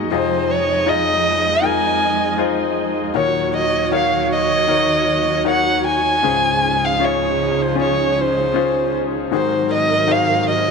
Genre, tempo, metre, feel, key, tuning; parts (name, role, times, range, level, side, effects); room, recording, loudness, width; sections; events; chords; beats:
pop; 78 BPM; 4/4; straight; Db major; A4 = 440 Hz
bright concert grand piano; accompaniment; 0.0-10.7 s; Db2 to Eb5; -20 LUFS; left 12 dB
dark studio string section; sustained chords; 0.0-10.7 s; Db2 to Eb5; -23 LUFS; right 11 dB
dark violin; melody; 0.1-10.7 s; C5 to Ab5; -18 LUFS; right 1 dB; tape echo
moderate plate reverb, RT60 2.3 s; 1960s-style stereo with parts hard left and right; -15 LUFS; side -5 dB against mid
0.0-10.7 A section
0.1 Fm7; 3.1 Ebm7; 6.2 Dbmaj7; 9.3 Ab7
| 0.11 0.87 1.63 2.38 | 3.15 3.92 4.68 5.46 | 6.24 7.00 7.77 8.55 | 9.31 10.08